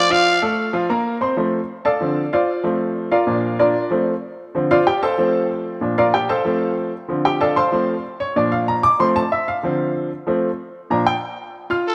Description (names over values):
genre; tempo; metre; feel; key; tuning
latin; 189 BPM; 4/4; straight; F major; A4 = 440 Hz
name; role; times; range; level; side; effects
growling trumpet; melody; 0.0-0.4, 11.9 s; A4 to F5; -20 LUFS; equal; none
bright upright piano; accompaniment; 0.0-11.9 s; Bb2 to F6; -20 LUFS; equal; none
room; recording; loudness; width
moderate plate reverb, RT60 2.4 s; heard from further back in the room; -19 LUFS; mono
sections
0.0-1.4 A section; 1.4-11.5 B section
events
upright piano solo 1.4-11.5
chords
0.1 F; 0.7 Bb5; 1.4 F; 2.0 Dm7; 2.6 F; 3.3 Bb; 3.9 F; 4.5 Dm7; 5.2 F; 5.8 Bb; 6.5 F; 7.1 Dm7; 7.7 F; 8.4 Bb; 9.0 F; 9.6 Dm7; 10.3 F; 10.9 Bb